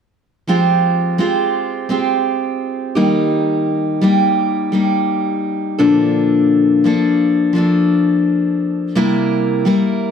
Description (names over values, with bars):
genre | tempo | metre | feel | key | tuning
pop | 85 BPM | 4/4 | straight | Bb major | A4 = 440 Hz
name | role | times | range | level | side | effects
picked steel-string acoustic guitar | accompaniment | 0.5-10.1 s | Bb2 to Bb4 | -13 LUFS | left 1 dB | none
room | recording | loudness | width
wet studio reverb, RT60 0.6 s | heard from further back in the room | -13 LUFS | side -7 dB against mid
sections
0.5-10.1 A section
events
none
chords
0.5 Fmadd9; 3.0 Eb; 5.8 Bbmaj7; 9.0 C7